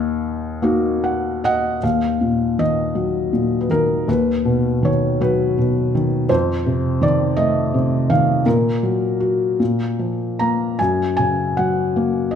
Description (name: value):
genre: classical, lyrical solo piano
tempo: 50-56 BPM (dotted quarters)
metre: 6/8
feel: rubato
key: Eb minor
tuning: A4 = 440 Hz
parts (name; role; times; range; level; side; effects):
- felt-muted upright piano; solo; 0.0-12.4 s; Eb2 to Bb5; -16 LUFS; left 1 dB; none
room: moderate scoring stage reverb, RT60 1.6 s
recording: minimal, uncompressed stereo recording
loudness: -16 LUFS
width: side -8 dB against mid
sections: 0.0-1.8 A section; 1.8-12.4 B section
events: felt piano fill 0.7-1.8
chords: 0.0 Ebm; 4.1 B/D#; 6.3 F7; 8.5 Gb/Bb; 9.6 Bb5; 10.8 Gb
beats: 0.65 | 1.82 2.95 | 4.08 5.21 | 6.29 7.37 | 8.46 9.60 | 10.79 11.95